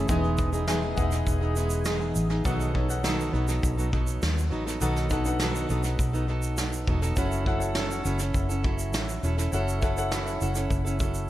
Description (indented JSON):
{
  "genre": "acoustic pop",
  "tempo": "102 BPM",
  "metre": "4/4",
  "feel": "straight",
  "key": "unclear",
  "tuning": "A4 = 440 Hz",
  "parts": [
    { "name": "fingerpicked plugged-in steel-string acoustic guitar", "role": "accompaniment", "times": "0.0-11.3 s", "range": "B2 to A4", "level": "-30 LUFS", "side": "right 2 dB", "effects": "none" },
    { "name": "warm concert grand piano", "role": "accompaniment", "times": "0.0-11.3 s", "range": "D4 to G#5", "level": "-34 LUFS", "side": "left 3 dB", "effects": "tape echo" },
    { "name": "glassy FM pad", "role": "sustained chords", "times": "0.0-2.4 s", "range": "E3 to D#5", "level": "-38 LUFS", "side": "left 1 dB", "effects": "none" },
    { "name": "vintage muted fingered electric bass", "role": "bass", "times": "0.0-11.3 s", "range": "E1 to D#2", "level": "-28 LUFS", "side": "equal", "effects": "none" },
    { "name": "soft brush drum kit", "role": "drums", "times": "0.1-11.3 s", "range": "kick drum, shaker, snare drum", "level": "-30 LUFS", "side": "equal", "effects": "tape echo" }
  ],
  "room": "little or no reverb",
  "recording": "echo-heavy mix",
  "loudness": "-24 LUFS",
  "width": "side -14 dB against mid",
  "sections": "0.0-2.5 A section; 2.5-11.3 B section",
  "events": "none",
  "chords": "0.1 Emaj7; 2.5 B7; 7.2 F#m7"
}